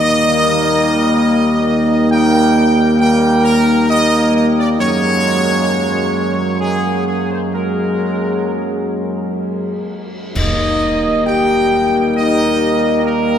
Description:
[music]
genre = classical, ceremonial fanfare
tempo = 67 BPM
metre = 3/4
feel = straight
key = Eb major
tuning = A4 = 439 Hz
[part]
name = bright trumpet section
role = melody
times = 0.0-13.4 s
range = Ab4 to G5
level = -17 LUFS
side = equal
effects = none
[part]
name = dark French horn section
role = sustained chords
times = 0.0-13.4 s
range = Bb3 to Ab4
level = -21 LUFS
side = left 3 dB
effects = none
[part]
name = mellow trombone section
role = sustained chords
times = 0.0-13.4 s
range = Gb3 to Bb3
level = -21 LUFS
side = right 2 dB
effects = none
[part]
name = mellow tuba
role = bass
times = 0.0-13.4 s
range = Eb2 to Gb2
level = -16 LUFS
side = equal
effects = none
[part]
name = timpani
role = percussion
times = 0.0-0.7 s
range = Eb3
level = -35 LUFS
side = right 1 dB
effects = none
[part]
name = cymbal swell, clash cymbals and concert bass drum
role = percussion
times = 7.5-12.1 s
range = none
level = -24 LUFS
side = equal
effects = none
[sound]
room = wet cathedral reverb, RT60 6.6 s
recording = none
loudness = -12 LUFS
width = side -9 dB against mid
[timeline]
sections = 0.0-10.3 A section; 10.3-13.4 B section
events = band accent 10.3-11.3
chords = 0.0 Eb; 4.8 Gbadd9; 10.3 Eb

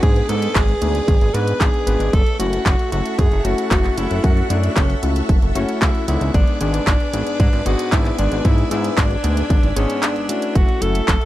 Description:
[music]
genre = italo disco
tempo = 114 BPM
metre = 4/4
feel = straight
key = unclear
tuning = A4 = 440 Hz
[part]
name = bright alto saxophone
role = melody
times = 0.0-11.3 s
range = C#4 to B4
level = -24 LUFS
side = equal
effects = tape echo
[part]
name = string machine, full ensemble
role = sustained chords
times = 0.0-11.3 s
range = A4 to E6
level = -28 LUFS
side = equal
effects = phaser, ensemble chorus
[part]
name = warm electric grand piano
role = stabs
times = 0.0-11.0 s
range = G#2 to B4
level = -25 LUFS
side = left 3 dB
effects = none
[part]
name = chorused synth bass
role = bass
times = 0.0-11.2 s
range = F#1 to G#2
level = -21 LUFS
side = equal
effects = none
[part]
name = electronic kick drum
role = drums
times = 0.0-11.2 s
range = none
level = -17 LUFS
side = equal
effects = overdrive
[part]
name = house drum kit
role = drums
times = 0.0-11.3 s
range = handclaps, hi-hat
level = -24 LUFS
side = equal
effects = overdrive
[sound]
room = little or no reverb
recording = dry, close 1970s-style studio recording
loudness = -15 LUFS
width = side -14 dB against mid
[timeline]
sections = 0.0-11.3 A section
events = break 10.0-10.6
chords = 0.0 G#dim; 2.1 F#m7; 6.3 G#dim; 10.6 F#m7

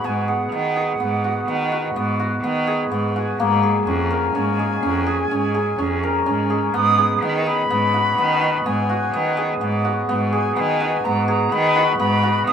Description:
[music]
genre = contemporary instrumental, chamber music in an uneven meter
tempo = 125 BPM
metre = 7/4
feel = straight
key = G# dorian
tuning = A4 = 440 Hz
[part]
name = concert flute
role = melody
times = 0.0-12.5 s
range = F#5 to D#6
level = -23 LUFS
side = left 1 dB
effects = none
[part]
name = cimbalom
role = arpeggios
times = 0.0-12.5 s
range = A#3 to A#4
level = -21 LUFS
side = equal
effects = none
[part]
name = clear cello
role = bass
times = 0.0-12.5 s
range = E#2 to D#3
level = -22 LUFS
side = right 1 dB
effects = none
[sound]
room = moderate studio reverb, RT60 0.8 s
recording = minimal, uncompressed stereo recording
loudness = -17 LUFS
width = side -8 dB against mid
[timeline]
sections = 0.0-10.1 A section; 10.1-12.5 B section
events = none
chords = 0.0 G#m7; 3.4 A#m7; 6.7 G#m7

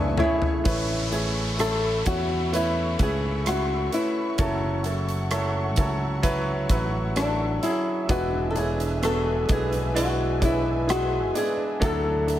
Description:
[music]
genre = pop ballad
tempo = 64 BPM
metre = 4/4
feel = straight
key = A major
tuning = A4 = 443 Hz
[part]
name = flamenco guitar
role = melody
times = 0.0-12.4 s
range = D4 to A4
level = -26 LUFS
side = left 2 dB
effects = none
[part]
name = warm studio cello section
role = second line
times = 0.0-0.7 s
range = A3 to B3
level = -41 LUFS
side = right 1 dB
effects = none
[part]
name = clear baby grand piano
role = accompaniment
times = 0.0-12.4 s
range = A2 to E5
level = -29 LUFS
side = right 1 dB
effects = none
[part]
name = warm studio string section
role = sustained chords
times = 0.0-12.4 s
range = A3 to C#6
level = -35 LUFS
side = equal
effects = none
[part]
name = fingerpicked plugged-in steel-string acoustic guitar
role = arpeggios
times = 0.0-1.3, 8.1-12.4 s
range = D3 to G#4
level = -34 LUFS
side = right 4 dB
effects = none
[part]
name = fingered electric bass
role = bass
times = 0.0-12.4 s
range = E1 to E2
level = -28 LUFS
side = equal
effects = none
[part]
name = huge arena drum kit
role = drums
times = 0.2-12.4 s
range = hi-hat, kick drum, rim click, toms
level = -29 LUFS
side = equal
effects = none
[part]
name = downlifter and riser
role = sound effects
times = 0.7-12.4 s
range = none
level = -36 LUFS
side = equal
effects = none
[sound]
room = light reverb, small room ambience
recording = none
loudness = -22 LUFS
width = side -12 dB against mid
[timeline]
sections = 0.7-12.4 A section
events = drum fill 0.0-0.7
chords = 0.0 Amaj7; 0.7 Aadd9; 4.4 F#m7; 8.1 E7; 11.8 Dadd9

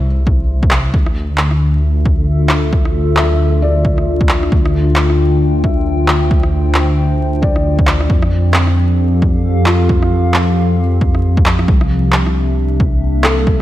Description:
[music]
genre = future garage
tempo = 134 BPM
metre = 4/4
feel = swing 61% on 16ths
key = D minor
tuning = A4 = 442 Hz
[part]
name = felt-muted upright piano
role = accompaniment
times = 0.0-13.6 s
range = E4 to E5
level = -24 LUFS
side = equal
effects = sidechain pumping, digital delay
[part]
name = dark detuned saw bass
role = bass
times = 0.0-13.6 s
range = C2 to F2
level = -14 LUFS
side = equal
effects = sidechain pumping
[part]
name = electronic kick drum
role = drums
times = 0.3-13.6 s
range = none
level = -14 LUFS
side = equal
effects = overdrive
[part]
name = electronic handclaps and rim click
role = drums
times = 0.7-13.4 s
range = none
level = -18 LUFS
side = equal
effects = overdrive
[part]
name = warbly tape-like pad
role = sustained chords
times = 1.3-13.6 s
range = C3 to G5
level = -18 LUFS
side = left 1 dB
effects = chorus, built-in reverb, sidechain pumping
[sound]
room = light reverb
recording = vinyl crackle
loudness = -11 LUFS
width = side -14 dB against mid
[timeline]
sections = 0.0-13.6 A section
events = none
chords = 0.0 C; 0.9 Dmadd9; 4.5 Dm11; 8.1 Fadd9; 11.7 C7

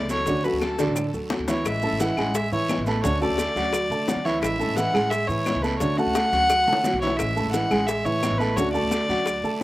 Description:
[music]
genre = latin, Cuban son and guajira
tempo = 173 BPM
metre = 4/4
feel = straight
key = A major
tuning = A4 = 439 Hz
[part]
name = warm violin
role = melody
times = 0.0-9.6 s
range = A4 to F#5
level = -25 LUFS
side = equal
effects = none
[part]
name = nylon-string guitar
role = accompaniment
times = 0.0-9.3 s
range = D3 to F#4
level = -30 LUFS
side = left 2 dB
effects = none
[part]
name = dark grand piano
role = arpeggios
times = 0.0-9.6 s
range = D3 to A5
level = -26 LUFS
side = right 2 dB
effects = slapback echo
[part]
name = upright bass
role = bass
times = 0.0-9.6 s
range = A1 to D3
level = -31 LUFS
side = equal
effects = none
[part]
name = congas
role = percussion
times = 0.1-9.6 s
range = none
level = -33 LUFS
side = left 2 dB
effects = none
[part]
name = guiro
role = percussion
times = 0.1-9.6 s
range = none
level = -38 LUFS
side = right 2 dB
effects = none
[part]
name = maracas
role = percussion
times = 0.1-9.6 s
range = none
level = -38 LUFS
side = right 4 dB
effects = none
[part]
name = bongos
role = percussion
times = 0.3-9.6 s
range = none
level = -31 LUFS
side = left 4 dB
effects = none
[part]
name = claves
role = percussion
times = 0.6-9.4 s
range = none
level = -37 LUFS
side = left 4 dB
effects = none
[sound]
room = little or no reverb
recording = recorded outdoors, with no room sound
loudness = -21 LUFS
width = side -16 dB against mid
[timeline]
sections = 0.0-1.7 A section; 1.7-9.6 B section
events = drum fill 0.6-1.7, 6.2-7.2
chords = 0.3 Dmaj7; 1.7 Amaj7; 3.0 Dmaj7; 4.4 Amaj7; 5.8 Dmaj7; 7.2 Amaj7; 8.6 Dmaj7

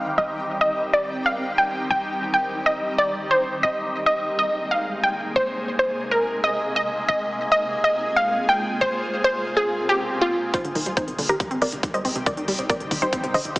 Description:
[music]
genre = uplifting trance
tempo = 139 BPM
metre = 4/4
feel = straight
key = C minor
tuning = A4 = 441 Hz
[part]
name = wide unison pluck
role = melody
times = 0.0-13.6 s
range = Eb4 to G5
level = -21 LUFS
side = equal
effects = sidechain pumping, digital delay
[part]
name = shimmering ambient pad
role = sustained chords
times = 0.0-13.6 s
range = C3 to Ab4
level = -29 LUFS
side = equal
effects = chorus, built-in reverb, phaser, sidechain pumping
[part]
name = tight sequencer bass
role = bass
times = 0.0-13.5 s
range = Ab1 to C2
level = -38 LUFS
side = equal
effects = sidechain pumping
[part]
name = swell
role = sound effects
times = 9.8-10.5 s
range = none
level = -32 LUFS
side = equal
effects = none
[part]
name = analog pluck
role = arpeggios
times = 10.5-13.6 s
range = C3 to C4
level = -28 LUFS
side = equal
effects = chorus, vintage 12-bit sampler grit, sidechain pumping, digital delay
[part]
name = electronic hi-hat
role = drums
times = 10.5-13.6 s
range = none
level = -31 LUFS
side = equal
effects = none
[part]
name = electronic kick drum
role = drums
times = 10.5-13.6 s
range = none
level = -27 LUFS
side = equal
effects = none
[sound]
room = wet lush hall reverb, RT60 2.1 s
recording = heavily compressed radio sound, multiband compression, small speaker sound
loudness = -20 LUFS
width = side -21 dB against mid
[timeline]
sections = 0.0-10.5 A section; 10.5-13.6 B section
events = swell 9.8-10.5; build-up 10.5-13.6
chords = 0.0 Cm; 3.6 Abadd9; 10.5 Cmadd9

